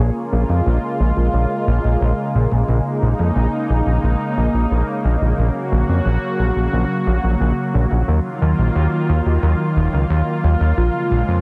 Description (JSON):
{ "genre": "synthwave", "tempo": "89 BPM", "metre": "4/4", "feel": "straight", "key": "Bb minor", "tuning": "A4 = 440 Hz", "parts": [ { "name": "lush unison pad", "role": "sustained chords", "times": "0.0-11.4 s", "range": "Db3 to Gb4", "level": "-23 LUFS", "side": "equal", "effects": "chorus, phaser" }, { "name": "fat analog bass", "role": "bass", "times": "0.0-11.4 s", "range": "Eb1 to F2", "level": "-19 LUFS", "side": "equal", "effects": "tube saturation" }, { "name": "unison lead", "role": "melody", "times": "10.8-11.2 s", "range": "F4", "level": "-24 LUFS", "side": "equal", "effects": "none" } ], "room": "light reverb, digital ambience", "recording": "dense, heavily limited modern master", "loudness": "-18 LUFS", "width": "mono", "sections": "0.0-11.4 A section", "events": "none", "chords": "0.0 Bbm7; 5.4 Gb/Bb; 8.1 Ebmadd9; 10.8 Bbm7", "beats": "0.66 1.34 2.01 | 2.69 3.36 4.03 4.71 | 5.38 6.06 6.73 7.41 | 8.08 8.75 9.43 10.10 | 10.78" }